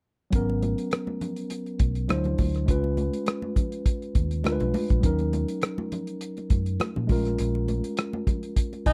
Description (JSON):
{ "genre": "lush 1970s-style soul", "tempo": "102 BPM", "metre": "4/4", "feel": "swing 54% on 16ths", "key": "G# dorian", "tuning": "A4 = 442 Hz", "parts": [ { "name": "tine electric piano", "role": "accompaniment", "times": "0.3-8.9 s", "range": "F#3 to G#5", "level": "-32 LUFS", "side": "equal", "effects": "none" }, { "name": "vintage muted fingered electric bass", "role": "bass", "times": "0.3-8.9 s", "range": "G#1 to A#2", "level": "-30 LUFS", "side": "equal", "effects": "none" }, { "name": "warm soul drum kit", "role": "drums", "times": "0.3-8.9 s", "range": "hi-hat, kick drum, rim click", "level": "-27 LUFS", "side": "equal", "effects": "none" }, { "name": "congas", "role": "percussion", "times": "0.3-8.9 s", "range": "none", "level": "-38 LUFS", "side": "equal", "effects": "none" }, { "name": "breathy tenor saxophone", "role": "melody", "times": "8.9 s", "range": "D#4", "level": "-26 LUFS", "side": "equal", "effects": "none" } ], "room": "little or no reverb", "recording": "dry, close 1970s-style studio recording", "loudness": "-27 LUFS", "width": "mono", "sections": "0.3-8.9 A section", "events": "tine electric piano fill 8.6-8.9", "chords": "0.3 G#m11; 2.1 D9; 2.7 C#7; 4.4 Ddim7; 5.0 D#m7; 7.1 A#m7" }